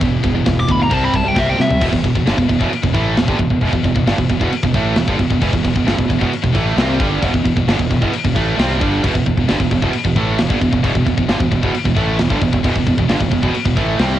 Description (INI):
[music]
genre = heavy metal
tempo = 133 BPM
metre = 4/4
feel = straight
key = E minor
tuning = A4 = 441 Hz
[part]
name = distorted electric guitar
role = riff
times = 0.0-14.2 s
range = E2 to C4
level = -19 LUFS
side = right 5 dB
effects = overdrive, cassette tape
[part]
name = distorted electric guitar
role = riff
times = 0.0-14.2 s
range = E2 to G4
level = -25 LUFS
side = left 2 dB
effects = distortion, cassette tape
[part]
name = heavy high-gain guitar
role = riff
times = 0.0-14.2 s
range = E2 to C4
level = -23 LUFS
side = left 8 dB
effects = distortion, cassette tape
[part]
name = growling fingered electric bass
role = bass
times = 0.0-14.2 s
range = E1 to C3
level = -21 LUFS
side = left 1 dB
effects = overdrive
[part]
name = tight metal drum kit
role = drums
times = 0.0-14.1 s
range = crash cymbal, kick drum, snare drum, toms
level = -19 LUFS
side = left 1 dB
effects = cassette tape
[part]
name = high-gain lead guitar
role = melody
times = 0.6-1.8 s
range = E5 to D6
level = -19 LUFS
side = left 1 dB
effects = distortion
[sound]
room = little or no reverb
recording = home recording on cassette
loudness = -14 LUFS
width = side -12 dB against mid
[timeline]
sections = 0.0-1.8 A section; 1.8-14.2 B section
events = lead electric guitar solo 0.0-1.8; drum fill 1.6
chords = 0.0 Em; 0.9 C5; 1.8 Em